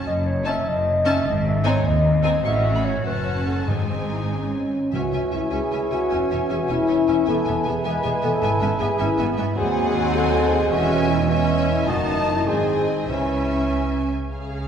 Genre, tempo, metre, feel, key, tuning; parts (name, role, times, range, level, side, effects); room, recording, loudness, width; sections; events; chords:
classical, dramatic, fast romantic movement for symphony orchestra; 94-106 BPM (dotted quarters); 6/8; rubato; C# minor; A4 = 436 Hz
warm studio violin section; melody; 0.0-14.1 s; G#5 to C#6; -33 LUFS; left 2 dB
warm symphonic violin section; second line; 0.0-14.7 s; D#4 to F#5; -32 LUFS; left 3 dB
warm symphonic viola section; accompaniment; 0.0-14.7 s; B3 to Ab4; -30 LUFS; right 2 dB
dark clarinet; second line; 0.1-14.0 s; G#3 to E5; -27 LUFS; left 1 dB
rich symphonic cello section; bass; 0.1-14.7 s; C#2 to C#3; -27 LUFS; right 2 dB
warm symphonic double bass section; bass; 0.1-14.7 s; E1 to D#2; -27 LUFS; right 1 dB
timpani; percussion; 1.2-5.5, 8.4-9.0 s; G#2 to C#3; -31 LUFS; left 2 dB
mellow French horn section; sustained chords; 4.1-14.1 s; C#4 to B4; -23 LUFS; left 1 dB
mellow cor anglais; second line; 4.9-14.1 s; B4 to D#5; -31 LUFS; right 2 dB
mellow hollow flute section; second line; 4.9-14.1 s; G#5 to A5; -30 LUFS; left 2 dB
mellow bassoon; accompaniment; 4.9-14.1 s; D#3 to F#3; -29 LUFS; equal
wet scoring stage reverb, RT60 1.7 s; heard from further back in the room; -19 LUFS; side -8 dB against mid
0.0-4.9 A section; 4.9-14.3 B section
0.1 D#m7/F#; 1.3 G#; 2.4 A6; 3.1 F#m; 3.7 G#; 4.9 C#m; 6.1 C#m/E; 7.3 E; 8.4 E/G#; 9.6 G#7/D#; 10.7 C#m/E; 11.9 D#dim/F#; 12.5 G#; 13.1 C#m